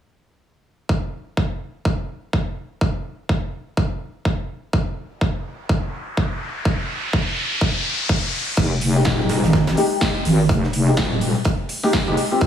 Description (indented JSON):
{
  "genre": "bass house",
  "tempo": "125 BPM",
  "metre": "4/4",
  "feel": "swing 59% on 16ths",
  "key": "F minor",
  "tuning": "A4 = 440 Hz",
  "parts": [
    { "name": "electronic kick drum", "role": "drums", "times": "0.9-12.5 s", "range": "none", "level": "-21 LUFS", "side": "equal", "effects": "none" },
    { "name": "riser", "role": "sound effects", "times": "5.7-8.6 s", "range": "none", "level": "-25 LUFS", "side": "left 1 dB", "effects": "none" },
    { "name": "wobble bass", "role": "bass", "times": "8.6-12.5 s", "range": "Eb1 to C2", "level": "-18 LUFS", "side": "equal", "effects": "chorus, overdrive, sidechain pumping" },
    { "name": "big rock drum kit", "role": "drums", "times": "8.6-12.5 s", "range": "hi-hat, snare drum", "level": "-32 LUFS", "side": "right 2 dB", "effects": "high-pass filter on hats, high-pass filter on snare, high-pass filter on room" },
    { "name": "big-room dance drum kit", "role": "drums", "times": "8.6-12.3 s", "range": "crash cymbal, hi-hat, snare drum", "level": "-25 LUFS", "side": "equal", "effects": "none" },
    { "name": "warm grand piano", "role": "stabs", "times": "9.0-12.5 s", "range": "Ab3 to G4", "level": "-22 LUFS", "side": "left 2 dB", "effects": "lush chorus, sidechain pumping, low-pass filter, analog delay" }
  ],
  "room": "light reverb, small room ambience",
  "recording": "studio ambience",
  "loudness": "-19 LUFS",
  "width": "side -9 dB against mid",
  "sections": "0.9-8.6 A section; 8.6-12.5 B section",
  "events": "riser 5.7-8.6; filter sweep on wobble bass 8.6-12.5; filter sweep on grand piano 8.6-12.5",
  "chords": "0.9 N.C.; 8.6 Fm7"
}